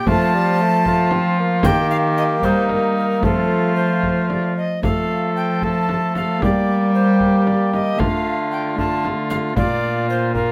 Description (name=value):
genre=classical, renaissance-style consort dance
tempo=76 BPM (dotted quarters)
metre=6/8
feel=straight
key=F mixolydian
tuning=A4 = 441 Hz
part: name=alto recorder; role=melody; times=0.0-10.5 s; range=A4 to A5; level=-26 LUFS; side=equal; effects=none
part: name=warm cor anglais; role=second line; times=0.0-10.5 s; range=Eb4 to A4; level=-26 LUFS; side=equal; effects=none
part: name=Celtic harp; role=accompaniment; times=0.0-10.5 s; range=Bb2 to A4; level=-29 LUFS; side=equal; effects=none
part: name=warm cello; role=bass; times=0.0-10.5 s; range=Bb2 to G3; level=-23 LUFS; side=equal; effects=none
part: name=clear bassoon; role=accompaniment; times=0.1-10.5 s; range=G3 to C4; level=-27 LUFS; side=equal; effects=none
part: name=frame drum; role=percussion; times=0.1-10.5 s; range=none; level=-26 LUFS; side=equal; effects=none
room=moderate stone room reverb, RT60 0.9 s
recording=none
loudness=-18 LUFS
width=mono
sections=0.0-4.8 A section; 4.8-10.5 B section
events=none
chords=0.1 F; 1.6 Eb; 3.2 F; 6.4 Gm; 8.0 Dm; 9.6 Bb